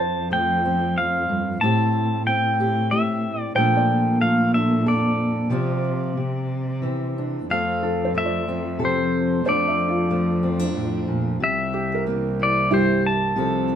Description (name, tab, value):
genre	folk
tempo	92 BPM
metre	3/4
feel	straight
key	F major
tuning	A4 = 440 Hz
part	pedal steel guitar	melody	0.0-13.8 s	C5 to A5	-23 LUFS	left 1 dB	none
part	fingerpicked steel-string acoustic guitar	accompaniment	0.0-13.8 s	F2 to A4	-24 LUFS	left 1 dB	none
part	felt-muted upright piano	arpeggios	0.0-13.8 s	E4 to E5	-29 LUFS	right 2 dB	none
part	dark cello	bass	0.0-13.8 s	C2 to C3	-25 LUFS	right 1 dB	none
room	moderate studio reverb, RT60 0.6 s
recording	minimal, uncompressed stereo recording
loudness	-19 LUFS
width	side -9 dB against mid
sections	0.0-7.5 A section; 7.5-13.8 A section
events	none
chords	0.0 Fadd9; 1.6 Am7; 3.6 Bbmaj7; 5.5 Csus4; 6.2 Cadd9; 7.5 Fmaj7; 9.5 Bbmaj7/F; 11.4 C7